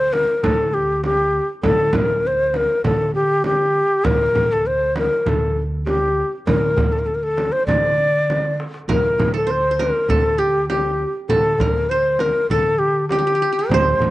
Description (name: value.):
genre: Arabic maqam ensemble.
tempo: 100 BPM.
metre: 4/4.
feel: straight.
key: D maqam bayati.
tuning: A4 = 441 Hz.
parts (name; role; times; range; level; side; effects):
breathy reedy ney; melody; 0.0-14.1 s; G4 to D5; -18 LUFS; left 1 dB; none.
upright bass; bass; 0.0-14.1 s; D2 to D3; -25 LUFS; right 1 dB; none.
darbuka; percussion; 0.1-14.1 s; none; -28 LUFS; equal; none.
frame drum; percussion; 0.1-14.1 s; none; -24 LUFS; right 2 dB; slapback echo.
qanun; second line; 8.9-14.1 s; G4 to C5; -26 LUFS; right 5 dB; slapback echo.
room: little or no reverb.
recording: recorded outdoors, with no room sound, nothing above 10.3 kHz.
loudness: -16 LUFS.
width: side -16 dB against mid.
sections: 0.0-14.1 A section.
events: drum fill 8.3-8.9.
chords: none.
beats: 0.44 1.04 | 1.64 2.25 2.85 3.45 | 4.06 4.66 5.26 5.87 | 6.47 7.07 7.68 8.28 | 8.88 9.49 10.09 10.69 | 11.29 11.90 12.50 13.10 | 13.70.